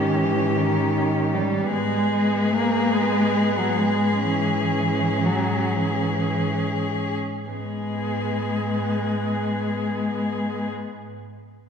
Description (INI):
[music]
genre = classical, lyrical piece for cello ensemble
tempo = 33-52 BPM (dotted quarters)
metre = 6/8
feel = rubato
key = G# minor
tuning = A4 = 440 Hz
[part]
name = rich cello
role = melody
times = 0.0-10.7 s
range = G4 to G#4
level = -27 LUFS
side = left 4 dB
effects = none
[part]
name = warm cello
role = second line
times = 0.0-10.7 s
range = B3 to C#4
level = -28 LUFS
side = right 3 dB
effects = none
[part]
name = dark cello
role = accompaniment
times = 0.0-10.7 s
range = D#3 to A#3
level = -24 LUFS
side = left 1 dB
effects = none
[part]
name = warm cello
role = bass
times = 0.0-10.7 s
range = G#2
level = -28 LUFS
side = right 2 dB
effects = none
[sound]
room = wet concert hall reverb, RT60 2.2 s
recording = heard from further back in the room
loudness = -20 LUFS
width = side -7 dB against mid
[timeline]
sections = 0.0-7.5 A section; 7.5-10.9 B section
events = slowing down 0.6-7.5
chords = 0.0 D#7/G#; 1.7 G#m; 4.3 C#m/G#; 7.5 G#m